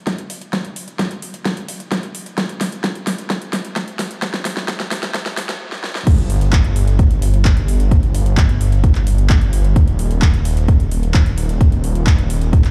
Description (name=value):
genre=EDM, festival progressive house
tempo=130 BPM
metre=4/4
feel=straight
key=unclear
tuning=A4 = 440 Hz
part: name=big-room dance drum kit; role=drums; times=0.1-12.7 s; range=crash cymbal, handclaps, hi-hat, snare drum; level=-26 LUFS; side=equal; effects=overdrive
part: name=electronic kick drum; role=drums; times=0.1-12.6 s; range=none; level=-16 LUFS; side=equal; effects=overdrive, high-pass filter on kick
part: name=detuned saw bass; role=bass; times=6.1-12.7 s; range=Eb1 to G1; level=-19 LUFS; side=equal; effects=chorus, sidechain pumping
room=little or no reverb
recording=played on a big sound system in a bare room, large studio reverb, high-pass filter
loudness=-17 LUFS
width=mono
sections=0.0-6.1 A section; 6.1-12.7 B section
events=build-up 0.0-6.1; drum fill 0.0-5.6, 5.7-6.1; filter sweep 0.0-6.1; stop 5.6-6.1; drop 6.1-12.7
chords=none